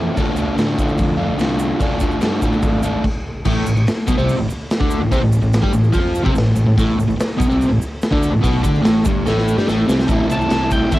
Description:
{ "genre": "garage rock duo or trio", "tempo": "145 BPM", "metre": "4/4", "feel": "straight", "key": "A minor", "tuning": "A4 = 440 Hz", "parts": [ { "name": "crunchy overdriven guitar", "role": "riff", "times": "0.0-11.0 s", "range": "G2 to G4", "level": "-17 LUFS", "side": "equal", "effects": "none" }, { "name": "fuzz fingered electric bass", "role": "bass", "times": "0.0-11.0 s", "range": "G1 to A2", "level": "-23 LUFS", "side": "equal", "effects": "overdrive" }, { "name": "raw garage drum kit", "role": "drums", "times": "0.2-11.0 s", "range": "crash cymbal, hi-hat, kick drum, ride cymbal, snare drum", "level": "-20 LUFS", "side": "equal", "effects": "cassette tape" }, { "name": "tube shaker", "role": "percussion", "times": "0.2-11.0 s", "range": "none", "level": "-39 LUFS", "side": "right 6 dB", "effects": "none" }, { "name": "fuzz lead guitar", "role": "melody", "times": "10.3-11.0 s", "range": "E5 to A5", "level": "-21 LUFS", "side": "equal", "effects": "distortion, cassette tape" } ], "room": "light reverb, small room ambience", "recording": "home recording on cassette", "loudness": "-15 LUFS", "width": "side -16 dB against mid", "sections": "0.0-3.5 A section; 3.5-10.1 B section", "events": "stop 3.0-3.5; drum fill 9.3-10.1", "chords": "0.2 Dm; 3.5 Am", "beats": "| 0.17 0.58 0.99 1.40 | 1.81 2.22 2.63 3.05 | 3.46 3.87 4.29 4.70 | 5.12 5.53 5.94 6.36 | 6.77 7.19 7.60 8.02 | 8.44 8.85 9.27 9.68 | 10.10 10.51 10.93" }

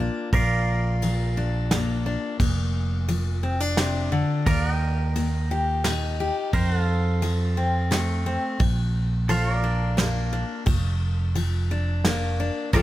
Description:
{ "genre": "honky-tonk and classic country", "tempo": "87 BPM", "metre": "3/4", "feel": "straight", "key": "Bb major", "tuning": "A4 = 440 Hz", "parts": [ { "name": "picked steel-string acoustic guitar", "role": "accompaniment", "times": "0.0-12.8 s", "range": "F2 to A4", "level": "-28 LUFS", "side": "left 3 dB", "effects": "none" }, { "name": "pedal steel guitar", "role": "sustained chords", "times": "0.0-12.8 s", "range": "A4 to G5", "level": "-30 LUFS", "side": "right 2 dB", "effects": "none" }, { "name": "fingered electric bass", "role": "bass", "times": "0.0-12.8 s", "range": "F1 to F2", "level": "-24 LUFS", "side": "right 1 dB", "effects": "none" }, { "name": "soft brush drum kit", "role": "drums", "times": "0.3-12.8 s", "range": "kick drum, ride cymbal, snare drum", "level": "-28 LUFS", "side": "equal", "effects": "none" } ], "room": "little or no reverb", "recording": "none", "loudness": "-22 LUFS", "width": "side -15 dB against mid", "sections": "0.3-12.8 A section", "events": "none", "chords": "0.3 Bb; 4.5 Eb; 6.5 F; 8.6 Bb", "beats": "| 0.33 1.02 1.71 | 2.40 3.09 3.78 | 4.47 5.16 5.85 | 6.54 7.23 7.92 | 8.60 9.29 9.98 | 10.67 11.36 12.04 | 12.73" }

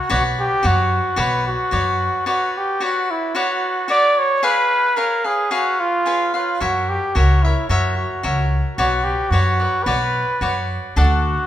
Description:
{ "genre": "mexican folk, mariachi", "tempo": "110 BPM", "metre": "2/4", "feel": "straight", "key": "B harmonic minor", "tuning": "A4 = 440 Hz", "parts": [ { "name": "mellow trumpet", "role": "melody", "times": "0.0-11.5 s", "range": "E4 to D5", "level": "-19 LUFS", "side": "equal", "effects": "none" }, { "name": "cavaquinho", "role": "accompaniment", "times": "0.0-11.5 s", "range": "D4 to F#5", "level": "-22 LUFS", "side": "left 2 dB", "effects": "none" }, { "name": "upright bass", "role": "bass", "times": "0.1-2.1, 6.6-11.3 s", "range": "B1 to F#2", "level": "-20 LUFS", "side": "equal", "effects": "none" } ], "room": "moderate recital hall reverb, RT60 1.6 s", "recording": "minimal, uncompressed stereo recording", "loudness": "-16 LUFS", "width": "side -12 dB against mid", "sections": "0.0-2.3 A section; 2.3-11.0 A section", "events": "none", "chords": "0.1 Bmadd9; 4.4 C#7; 6.6 F#7; 8.8 Bmadd9; 11.0 D", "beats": "| 0.09 0.63 | 1.17 1.72 | 2.26 2.81 | 3.35 3.89 | 4.43 4.97 | 5.51 6.05 | 6.60 7.15 | 7.70 8.24 | 8.78 9.31 | 9.86 10.40 | 10.96" }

